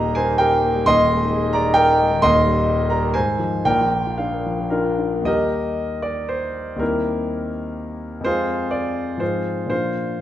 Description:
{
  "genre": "classical, romantic character piece for solo piano",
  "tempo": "104-142 BPM",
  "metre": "3/4",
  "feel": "rubato",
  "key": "Eb major",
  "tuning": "A4 = 440 Hz",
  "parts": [
    { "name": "warm concert grand piano", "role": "solo", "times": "0.0-10.2 s", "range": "Eb1 to C6", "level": "-18 LUFS", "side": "equal", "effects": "none" }
  ],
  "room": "wet recital hall reverb, RT60 1.3 s",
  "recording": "none",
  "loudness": "-18 LUFS",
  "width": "side -12 dB against mid",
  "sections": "0.0-5.3 A section; 5.3-10.2 B section",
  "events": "none",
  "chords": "0.0 Eb; 0.9 Ab/Eb; 2.2 Eb; 3.1 Ab6; 3.7 Bb; 5.3 Eb; 6.8 C7/Eb; 8.3 Fm; 9.2 Fm/Ab; 9.7 Bb"
}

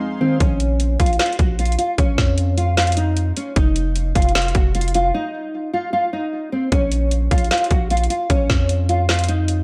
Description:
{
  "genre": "hip hop, trap",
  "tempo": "152 BPM",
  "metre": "4/4",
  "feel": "half-time",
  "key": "Bb minor",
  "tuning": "A4 = 442 Hz",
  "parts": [
    { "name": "nylon-string guitar", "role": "melody", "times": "0.0-9.6 s", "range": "C4 to Gb4", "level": "-24 LUFS", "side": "equal", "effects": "analog chorus, tape echo" },
    { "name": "long sustained 808-style bass", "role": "bass", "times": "0.4-9.6 s", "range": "F1 to F2", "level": "-22 LUFS", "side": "equal", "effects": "none" },
    { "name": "trap drum kit", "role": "drums", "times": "0.4-9.6 s", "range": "hi-hat, kick drum, snare drum", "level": "-22 LUFS", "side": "equal", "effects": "vintage 12-bit sampler grit" }
  ],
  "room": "moderate plate reverb, RT60 1.4 s",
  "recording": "dreamy mix soaked in reverb",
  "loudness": "-19 LUFS",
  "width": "mono",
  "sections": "0.4-9.6 A section",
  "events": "break 0.0-0.4, 5.1-6.7",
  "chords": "0.4 Bbm; 3.6 Ebsus2/F; 6.7 Bbm"
}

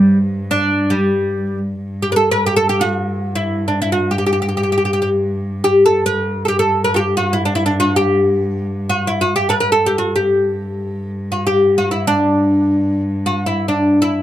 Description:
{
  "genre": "Arabic maqam ensemble",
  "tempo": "free time",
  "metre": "none",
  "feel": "none",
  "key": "G maqam rast",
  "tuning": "A4 = 441 Hz",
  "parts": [
    { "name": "oud", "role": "melody", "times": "0.0-14.2 s", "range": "G3 to Bb4+50c", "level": "-15 LUFS", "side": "equal", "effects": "none" },
    { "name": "rich cello", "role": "drone", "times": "0.0-14.2 s", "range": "G2", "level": "-22 LUFS", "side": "equal", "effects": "none" }
  ],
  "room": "little or no reverb",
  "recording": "close, detailed microphones",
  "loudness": "-14 LUFS",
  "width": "side -12 dB against mid",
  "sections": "0.0-1.8 A section; 1.8-14.2 A section",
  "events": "none",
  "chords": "none"
}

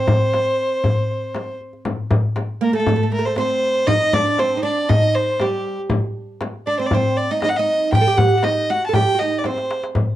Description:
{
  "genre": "Arabic maqam ensemble",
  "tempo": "119 BPM",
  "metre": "4/4",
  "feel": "straight",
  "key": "C maqam nikriz",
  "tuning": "A4 = 440 Hz",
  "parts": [
    { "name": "warm violin", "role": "melody", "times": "0.0-9.8 s", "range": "G4 to A5", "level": "-19 LUFS", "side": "equal", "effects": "plate reverb" },
    { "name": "oud", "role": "second line", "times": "0.0-9.8 s", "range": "G3 to A4", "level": "-24 LUFS", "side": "right 5 dB", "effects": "none" },
    { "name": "darbuka", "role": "percussion", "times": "0.1-10.1 s", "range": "none", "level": "-22 LUFS", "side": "left 1 dB", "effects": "none" },
    { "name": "frame drum", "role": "percussion", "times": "0.1-10.1 s", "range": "none", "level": "-23 LUFS", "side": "left 2 dB", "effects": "none" }
  ],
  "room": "wet small room reverb, RT60 0.5 s",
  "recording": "dark, warm production",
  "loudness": "-16 LUFS",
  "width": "side -13 dB against mid",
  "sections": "0.0-1.9 A section; 1.9-10.2 B section",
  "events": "drum fill 9.4-9.9",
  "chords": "none"
}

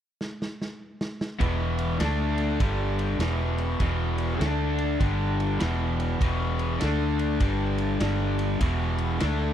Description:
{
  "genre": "blues rock power trio and southern rock",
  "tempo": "100 BPM",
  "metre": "4/4",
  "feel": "swing 63% on 8ths",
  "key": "E minor",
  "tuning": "A4 = 440 Hz",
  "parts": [
    { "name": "raw garage drum kit", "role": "drums", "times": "0.2-9.4 s", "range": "kick drum, ride cymbal, snare drum", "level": "-31 LUFS", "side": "right 1 dB", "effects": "none" },
    { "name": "overdriven tonewheel organ", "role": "sustained chords", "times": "1.4-9.5 s", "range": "D4 to D5", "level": "-40 LUFS", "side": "right 6 dB", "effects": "none" },
    { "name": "raw garage guitar", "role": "riff", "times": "1.4-9.5 s", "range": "E2 to D4", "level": "-27 LUFS", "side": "left 2 dB", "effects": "overdrive" },
    { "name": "vintage muted fingered electric bass", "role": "bass", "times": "1.4-9.5 s", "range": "E1 to D2", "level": "-27 LUFS", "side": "equal", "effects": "none" }
  ],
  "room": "small room ambience",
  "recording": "dry, close 1970s-style studio recording",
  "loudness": "-24 LUFS",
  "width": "side -10 dB against mid",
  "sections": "0.0-1.4 A section; 1.4-9.5 B section",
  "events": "drum fill 0.2-1.4",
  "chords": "0.0 N.C.; 1.4 Em; 2.0 D5; 2.6 G5; 3.2 Em; 4.4 D5; 5.0 G5; 5.6 Em; 6.8 D5; 7.4 G5; 8.6 Em"
}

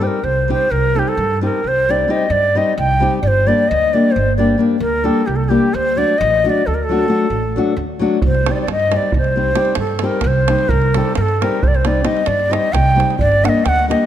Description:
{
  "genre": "balkan folk, Balkan wedding band",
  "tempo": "265 BPM (eighths)",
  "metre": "11/8",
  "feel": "straight",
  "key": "C dorian sharp4",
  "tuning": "A4 = 440 Hz",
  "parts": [
    { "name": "breathy ney", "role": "melody", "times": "0.0-14.1 s", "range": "G4 to G5", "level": "-17 LUFS", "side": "equal", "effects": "none" },
    { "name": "nylon-string guitar", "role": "accompaniment", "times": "0.0-14.1 s", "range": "F#3 to G4", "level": "-19 LUFS", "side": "left 3 dB", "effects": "none" },
    { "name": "upright bass", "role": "bass", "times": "0.0-13.9 s", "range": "G1 to G2", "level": "-19 LUFS", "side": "right 1 dB", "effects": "none" },
    { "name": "davul", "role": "percussion", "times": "8.2-14.0 s", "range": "none", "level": "-21 LUFS", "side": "right 3 dB", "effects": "none" }
  ],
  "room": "moderate concert hall reverb, RT60 1.8 s",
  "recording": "none",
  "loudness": "-13 LUFS",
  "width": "side -10 dB against mid",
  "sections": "0.0-14.1 A section",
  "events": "none",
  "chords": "0.0 Cm; 3.2 Gm; 5.7 D; 8.2 Cm; 13.2 Gm"
}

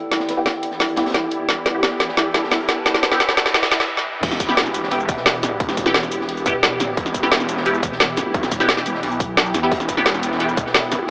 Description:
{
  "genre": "dark technical drum and bass",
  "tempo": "175 BPM",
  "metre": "4/4",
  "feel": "straight",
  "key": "E minor",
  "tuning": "A4 = 440 Hz",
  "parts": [
    { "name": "swarming drone", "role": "sustained chords", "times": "0.0-11.1 s", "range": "E3 to A4", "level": "-26 LUFS", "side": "equal", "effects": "built-in reverb, sidechain pumping" },
    { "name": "riser, noise sweep and impact", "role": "sound effects", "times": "1.3-5.6 s", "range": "none", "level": "-30 LUFS", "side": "equal", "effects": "none" },
    { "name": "warbly tape-like pad", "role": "texture", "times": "0.0-11.1 s", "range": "E4 to A5", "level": "-31 LUFS", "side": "equal", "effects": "chorus, built-in reverb, sidechain pumping" },
    { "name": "felt-muted upright piano", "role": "arpeggios", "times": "0.1-3.9 s", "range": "E4 to B4", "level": "-28 LUFS", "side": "equal", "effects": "sidechain pumping, low-pass filter, tape echo" },
    { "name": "crunchy breakbeat drum kit", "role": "drums", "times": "0.1-11.0 s", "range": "hi-hat, snare drum", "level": "-30 LUFS", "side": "equal", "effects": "none" },
    { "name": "drum and bass drum kit", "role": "drums", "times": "0.1-11.0 s", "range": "cabasa, crash cymbal, hi-hat, snare drum, toms", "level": "-18 LUFS", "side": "equal", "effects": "none" },
    { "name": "filtered dub chord stab", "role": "stabs", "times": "0.4-10.5 s", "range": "B3 to G4", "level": "-24 LUFS", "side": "equal", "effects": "phaser, ensemble chorus, tape echo" },
    { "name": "wide detuned saw bass", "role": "bass", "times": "4.2-10.6 s", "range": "E1 to B1", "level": "-25 LUFS", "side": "equal", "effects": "chorus, overdrive" },
    { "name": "electronic kick drum", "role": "drums", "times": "4.2-10.6 s", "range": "none", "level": "-23 LUFS", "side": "equal", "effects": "none" },
    { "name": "pulsing pluck wobble bass", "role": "bass", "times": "5.1-11.1 s", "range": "E1 to E2", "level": "-26 LUFS", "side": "equal", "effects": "chorus" }
  ],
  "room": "moderate lush hall reverb, RT60 1.7 s, digital ambience",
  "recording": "high-pass filter, AM radio sound",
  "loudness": "-16 LUFS",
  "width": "side -30 dB against mid",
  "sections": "0.0-4.2 A section; 4.2-11.1 B section",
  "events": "build-up 0.0-4.2; drum fill 0.0-3.9, 4.0; filter sweep on felt piano 0.0-4.2; filter sweep 0.0-4.2; break 3.9-4.2; drop 4.2-11.1; impact 4.2-5.6",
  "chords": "0.0 Em"
}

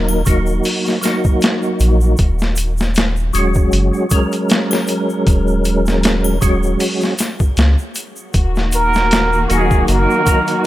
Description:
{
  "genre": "trip hop",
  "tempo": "78 BPM",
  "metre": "4/4",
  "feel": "swing 55% on 16ths",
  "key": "unclear",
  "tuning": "A4 = 440 Hz",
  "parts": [
    { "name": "percussive tonewheel organ", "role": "accompaniment", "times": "0.0-10.7 s", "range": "Gb3 to Bb4", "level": "-18 LUFS", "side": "equal", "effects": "chorus vibrato, fast rotary speaker, tremolo, tape echo" },
    { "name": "soft dub sub bass", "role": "bass", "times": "0.0-10.1 s", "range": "Eb1 to Db2", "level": "-16 LUFS", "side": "equal", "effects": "tube saturation" },
    { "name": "triangle and tube shaker", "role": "percussion", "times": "0.1-10.6 s", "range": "none", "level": "-28 LUFS", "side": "left 2 dB", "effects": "none" },
    { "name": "boom bap sampler-style drum kit", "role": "drums", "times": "0.3-10.6 s", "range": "hi-hat, kick drum, snare drum", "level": "-17 LUFS", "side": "equal", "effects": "overdrive" },
    { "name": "dark symphonic string section", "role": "sustained chords", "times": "8.3-10.7 s", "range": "Eb3 to Gb4", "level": "-21 LUFS", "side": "left 1 dB", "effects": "none" },
    { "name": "trumpet with plunger mute", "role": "melody", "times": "8.7-10.7 s", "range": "Ab4 to Bb4", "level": "-16 LUFS", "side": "right 2 dB", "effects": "tape echo" }
  ],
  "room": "little or no reverb",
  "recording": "none",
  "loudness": "-13 LUFS",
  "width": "side -15 dB against mid",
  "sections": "0.0-10.7 A section",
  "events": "none",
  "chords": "0.0 Ebm; 2.2 Dbsus4/Eb; 8.3 Ebm"
}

